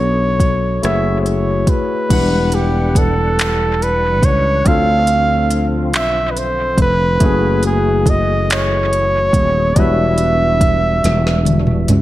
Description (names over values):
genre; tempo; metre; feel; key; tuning
slow six-eight R&B; 47 BPM (dotted quarters); 6/8; straight; E dorian; A4 = 440 Hz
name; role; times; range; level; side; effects
warm flugelhorn; melody; 0.0-11.9 s; G4 to F5; -17 LUFS; right 1 dB; dub echo
barky tine electric piano; accompaniment; 0.0-12.0 s; F#3 to F#5; -22 LUFS; left 4 dB; overdrive, wide subtle chorus, dub echo
sustaining fretless electric bass; bass; 0.0-12.0 s; D#1 to D2; -17 LUFS; equal; analog chorus
smooth R&B drum kit; drums; 0.4-12.0 s; crash cymbal, handclaps, hi-hat, kick drum, rim click, snare drum, toms; -17 LUFS; equal; none
percussive tonewheel organ; sustained chords; 2.1-12.0 s; D3 to F#5; -27 LUFS; right 1 dB; chorus vibrato, slow rotary speaker
room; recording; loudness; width
light reverb; echo-heavy mix; -12 LUFS; side -15 dB against mid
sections
0.0-2.1 A section; 2.1-12.0 B section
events
drum fill 11.0-12.0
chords
0.0 Bm9; 0.8 F#m9; 2.1 Em9; 4.7 Dm7; 7.2 F#m9; 9.8 Em9